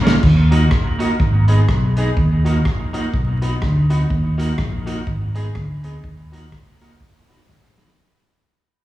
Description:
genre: ska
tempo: 124 BPM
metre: 4/4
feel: swing 59% on 8ths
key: Eb minor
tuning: A4 = 442 Hz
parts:
  - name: clean electric guitar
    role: accompaniment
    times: 0.0-7.9 s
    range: Bb3 to Ab4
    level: -24 LUFS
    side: right 3 dB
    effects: spring reverb, dub echo, plate reverb, slapback echo
  - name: honky-tonk upright piano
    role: stabs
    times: 0.0-7.9 s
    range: Db4 to Eb5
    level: -30 LUFS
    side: left 4 dB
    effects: dub echo, plate reverb, slapback echo
  - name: fingered electric bass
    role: bass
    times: 0.0-7.9 s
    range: Ab1 to Eb2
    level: -17 LUFS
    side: equal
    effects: none
  - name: vintage drum kit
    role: drums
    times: 0.1-8.0 s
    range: crash cymbal, hi-hat, kick drum, rim click, snare drum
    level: -21 LUFS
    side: equal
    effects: none
room: light reverb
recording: live gig heard through the venue's PA, club reverb, vinyl crackle, studio reverb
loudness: -15 LUFS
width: side -15 dB against mid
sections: 0.2-8.0 A section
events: drum fill 0.0, 7.5-8.0; fade-out 0.2-8.0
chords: 0.2 Ebm; 1.2 Abm; 2.2 Ebm; 3.1 B; 4.1 Ebm; 5.1 Abm; 6.0 Ebm; 7.0 B

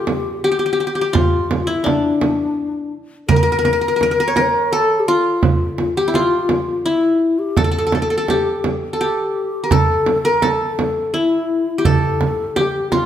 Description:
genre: Arabic maqam ensemble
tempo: 84 BPM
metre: 3/4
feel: straight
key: A maqam hijaz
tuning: A4 = 440 Hz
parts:
  - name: qanun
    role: melody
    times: 0.0-13.1 s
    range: D4 to C#5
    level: -18 LUFS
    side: equal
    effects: none
  - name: breathy mellow low ney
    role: second line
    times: 0.0-13.1 s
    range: D4 to C#5-21c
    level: -20 LUFS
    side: left 4 dB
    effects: none
  - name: frame drum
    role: percussion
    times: 0.1-13.1 s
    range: none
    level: -19 LUFS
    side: right 4 dB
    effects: none
room: wet recital hall reverb, RT60 1.4 s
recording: none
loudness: -15 LUFS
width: side -10 dB against mid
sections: 0.0-13.1 A section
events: none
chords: none

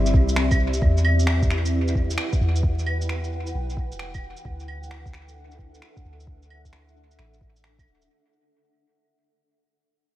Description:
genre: future garage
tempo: 132 BPM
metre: 4/4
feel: swing 66% on 16ths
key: unclear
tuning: A4 = 440 Hz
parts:
  - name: granular cloud pad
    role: sustained chords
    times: 0.0-8.1 s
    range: C4 to G5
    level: -29 LUFS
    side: equal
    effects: built-in reverb, sidechain pumping
  - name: soft 808-style bass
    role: bass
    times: 0.0-8.1 s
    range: D1 to E2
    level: -23 LUFS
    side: equal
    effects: none
  - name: electronic kick drum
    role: drums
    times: 0.1-7.8 s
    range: none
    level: -22 LUFS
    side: equal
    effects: none
  - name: electronic shaker, finger snaps and claves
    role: drums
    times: 0.1-8.1 s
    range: none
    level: -30 LUFS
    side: right 1 dB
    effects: dub echo
room: moderate echo chamber reverb, RT60 2.2 s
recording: echo-heavy mix, vinyl crackle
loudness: -20 LUFS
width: side -15 dB against mid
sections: 0.0-8.1 A section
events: fade-out 0.0-8.1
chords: 0.0 C; 0.8 Emadd9; 4.5 D

